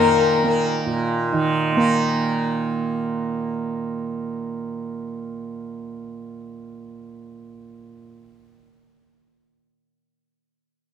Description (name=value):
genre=indian classical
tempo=150 BPM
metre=3/4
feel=straight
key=unclear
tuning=A4 = 439 Hz
part: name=rich violin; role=melody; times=0.0-0.7 s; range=Bb4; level=-22 LUFS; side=left 10 dB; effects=none
part: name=tanpura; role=drone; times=0.0-8.5 s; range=Bb2 to Bb3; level=-22 LUFS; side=right 3 dB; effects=none
room=light reverb, studio reverb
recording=1960s-style stereo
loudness=-20 LUFS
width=side -8 dB against mid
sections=0.0-1.9 A section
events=none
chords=none